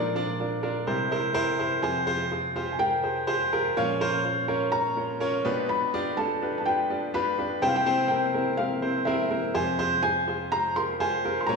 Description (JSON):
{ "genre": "pop", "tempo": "125 BPM", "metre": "4/4", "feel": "swing 56% on 16ths", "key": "F harmonic minor", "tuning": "A4 = 440 Hz", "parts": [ { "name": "felt-muted upright piano", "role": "melody", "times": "0.0-11.6 s", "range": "D5 to C6", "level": "-28 LUFS", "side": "left 1 dB", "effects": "none" }, { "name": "warm baby grand piano", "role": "accompaniment", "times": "0.0-11.6 s", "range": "F2 to E5", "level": "-25 LUFS", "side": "equal", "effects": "none" } ], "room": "wet recital hall reverb, RT60 1.5 s", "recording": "studio reverb", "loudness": "-24 LUFS", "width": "side -4 dB against mid", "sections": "0.0-1.8 A section; 1.8-11.6 A section", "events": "grand piano fill 1.1-1.8", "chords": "0.0 Bb; 0.9 C7; 1.8 Fmadd9; 3.8 Bbm; 5.5 G7/B; 7.6 C; 9.6 Fmadd9", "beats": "0.40 0.88 1.36 | 1.84 2.33 2.81 3.29 | 3.77 4.25 4.73 5.21 | 5.70 6.18 6.66 7.14 | 7.62 8.10 8.59 9.07 | 9.55 10.03 10.52 11.00 | 11.48" }